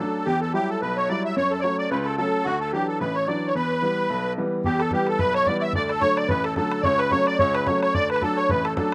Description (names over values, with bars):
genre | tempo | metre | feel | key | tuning
celtic folk, Celtic reel | 219 BPM | 4/4 | swing 56% on 8ths | E dorian | A4 = 440 Hz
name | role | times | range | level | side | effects
musette accordion | melody | 0.0-8.9 s | F#4 to E5 | -25 LUFS | equal | slapback echo
clear upright piano | accompaniment | 0.0-8.9 s | A1 to E4 | -28 LUFS | equal | none
bodhran | percussion | 4.6-8.9 s | none | -32 LUFS | equal | none
room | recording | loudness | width
light reverb | recorded outdoors, with no room sound | -23 LUFS | mono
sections
0.0-4.6 A section; 4.6-8.9 A section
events
none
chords
0.3 Emadd9; 1.4 F#m; 2.5 Dadd9; 3.5 Em; 5.7 D; 6.8 F#m/C#; 7.9 D